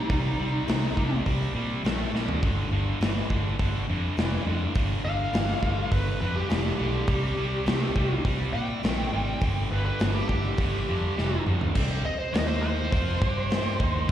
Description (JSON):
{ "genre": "blues rock power trio and southern rock", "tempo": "103 BPM", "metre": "4/4", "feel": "straight", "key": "C minor", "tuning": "A4 = 440 Hz", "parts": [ { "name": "smooth overdriven lead guitar", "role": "melody", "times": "0.0-1.2, 5.0-14.1 s", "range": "Eb4 to G5", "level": "-32 LUFS", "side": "right 1 dB", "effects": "slapback echo, tape echo" }, { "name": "sludgy distorted guitar", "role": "riff", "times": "0.0-14.1 s", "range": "G2 to G4", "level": "-31 LUFS", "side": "right 1 dB", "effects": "overdrive, slapback echo" }, { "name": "fingered electric bass", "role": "bass", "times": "0.1-14.1 s", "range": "F1 to Bb2", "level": "-28 LUFS", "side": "equal", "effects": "none" }, { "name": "big rock drum kit", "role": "drums", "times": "0.1-14.1 s", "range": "crash cymbal, hi-hat, kick drum, snare drum, toms", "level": "-28 LUFS", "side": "equal", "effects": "none" } ], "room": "light reverb", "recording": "live gig heard through the venue's PA, recital hall reverb", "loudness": "-24 LUFS", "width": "side -11 dB against mid", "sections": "0.0-11.8 A section; 11.8-14.1 B section", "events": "drum fill 2.1, 11.2-11.8; lead electric guitar solo 11.8-14.1", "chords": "0.0 Cm7; 2.4 G7(no3); 7.1 C5; 9.4 G5; 11.8 C5; 12.3 Eb5; 12.9 F5; 13.2 G5" }